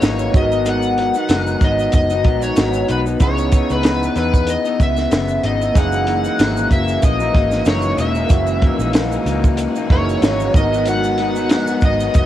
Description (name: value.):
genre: indie pop, bedroom pop.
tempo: 94 BPM.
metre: 4/4.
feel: swing 55% on 16ths.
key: unclear.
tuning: A4 = 439 Hz.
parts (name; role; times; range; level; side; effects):
overdriven slide guitar; melody; 0.0-12.3 s; B4 to F#5; -21 LUFS; left 1 dB; wide subtle chorus, cassette tape, tape echo.
barky tine electric piano; accompaniment; 0.0-12.3 s; A#3 to A#5; -25 LUFS; right 9 dB; cassette tape.
electric guitar through a small old amp; accompaniment; 0.0-12.3 s; F#2 to D#4; -21 LUFS; left 5 dB; wide subtle chorus, warbly pitch drift, cassette tape.
vintage muted picked electric bass; bass; 0.0-12.3 s; E1 to E2; -22 LUFS; right 1 dB; tube saturation.
compact cocktail drum kit; drums; 0.0-12.3 s; hi-hat, kick drum, snare drum; -16 LUFS; equal; vintage 12-bit sampler grit, cassette tape.
tube shaker; percussion; 0.0-12.3 s; none; -39 LUFS; right 12 dB; none.
string machine, full ensemble; sustained chords; 5.7-12.3 s; E3 to F#4; -26 LUFS; right 1 dB; ensemble chorus, cassette tape.
room: light reverb, small room ambience.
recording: home recording on cassette.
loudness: -14 LUFS.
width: side -12 dB against mid.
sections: 0.0-12.3 A section.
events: none.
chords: 0.3 G#m7; 3.2 C#m9; 5.8 F#13; 10.5 G#m7.